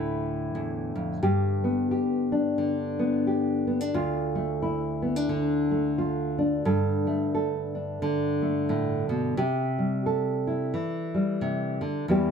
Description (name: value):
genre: folk, solo fingerstyle acoustic guitar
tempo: 88 BPM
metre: 4/4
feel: swing 59% on 8ths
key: unclear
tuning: A4 = 441 Hz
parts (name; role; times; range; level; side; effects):
- nylon-string guitar; solo; 0.0-12.3 s; D2 to A4; -24 LUFS; equal; none
room: light reverb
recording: close, detailed microphones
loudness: -24 LUFS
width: side -6 dB against mid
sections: 0.0-1.2 A section; 1.2-12.3 B section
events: none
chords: 0.0 Dm; 1.2 G; 3.9 Dm; 6.7 Gsus2; 9.4 C